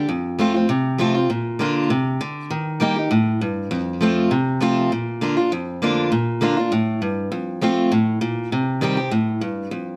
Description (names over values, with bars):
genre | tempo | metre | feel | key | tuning
bluegrass | 199 BPM | 4/4 | straight | Bb major | A4 = 440 Hz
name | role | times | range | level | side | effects
picked steel-string acoustic guitar | solo | 0.0-10.0 s | F2 to G4 | -21 LUFS | equal | none
room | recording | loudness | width
light reverb | close, detailed microphones | -21 LUFS | mono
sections
0.0-6.1 A section; 6.1-10.0 B section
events
none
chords
0.1 F; 1.3 Bb; 2.5 Eb; 3.7 F; 4.9 Bb; 7.3 F; 8.5 Cm